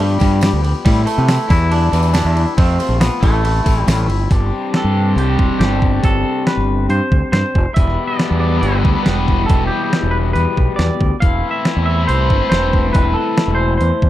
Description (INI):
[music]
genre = indie rock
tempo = 139 BPM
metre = 4/4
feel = straight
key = unclear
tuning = A4 = 439 Hz
[part]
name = twangy electric guitar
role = melody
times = 0.0-14.1 s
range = G3 to F5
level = -21 LUFS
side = right 1 dB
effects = spring reverb, slapback echo
[part]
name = biting overdriven guitar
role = riff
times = 0.0-14.1 s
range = E2 to G4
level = -21 LUFS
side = left 5 dB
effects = none
[part]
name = twangy electric guitar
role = riff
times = 0.0-14.1 s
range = E3 to E4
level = -28 LUFS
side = right 10 dB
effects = lush chorus, slapback echo
[part]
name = growling fingered electric bass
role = bass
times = 0.0-14.1 s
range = E1 to C3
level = -16 LUFS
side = equal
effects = overdrive
[part]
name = detuned 8-bit digital drum machine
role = drums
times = 0.0-14.1 s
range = crash cymbal, hi-hat, kick drum, snare drum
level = -17 LUFS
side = equal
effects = none
[part]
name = tambourine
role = percussion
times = 0.0-4.3 s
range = none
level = -38 LUFS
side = right 19 dB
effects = none
[sound]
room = little or no reverb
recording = dry, close 1970s-style studio recording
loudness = -13 LUFS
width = side -14 dB against mid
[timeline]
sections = 0.0-4.3 A section; 4.3-14.1 B section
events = none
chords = 0.0 G7sus4; 0.9 Am; 1.5 Em7; 2.6 F; 3.2 Am; 4.3 Gsus4; 7.8 Em7; 11.2 Am7/E